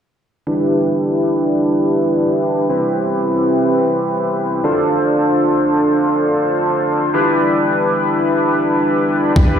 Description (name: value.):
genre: dance-pop.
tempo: free time.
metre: none.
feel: none.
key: G mixolydian.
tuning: A4 = 444 Hz.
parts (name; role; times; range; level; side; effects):
chorused polysynth; accompaniment; 0.5-9.6 s; C4 to C5; -14 LUFS; equal; sidechain pumping, low-pass filter, slapback echo.
electronic kick drum; drums; 9.4-9.5 s; none; -11 LUFS; equal; none.
room: light reverb, digital ambience.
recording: live gig heard through the venue's PA, recital hall reverb.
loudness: -14 LUFS.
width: side -8 dB against mid.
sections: 0.5-9.6 A section.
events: filter sweep on analog polysynth 0.5-9.6.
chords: 0.5 G6; 2.7 Cmaj7; 4.6 Dm7; 7.1 Em7.